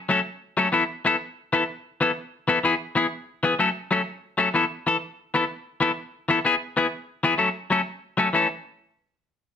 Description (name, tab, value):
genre	highlife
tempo	126 BPM (dotted quarters)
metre	12/8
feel	straight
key	A major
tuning	A4 = 441 Hz
part	clean electric guitar	solo	0.1-8.5 s	E3 to A4	-21 LUFS	left 3 dB	none
room	moderate studio reverb, RT60 0.7 s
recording	none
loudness	-22 LUFS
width	side -8 dB against mid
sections	0.0-8.3 A section; 8.3-9.6 B section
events	none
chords	0.0 F#m; 0.7 Asus2; 2.6 E; 3.6 F#m; 4.5 Asus2; 6.4 E; 7.4 F#m; 8.3 A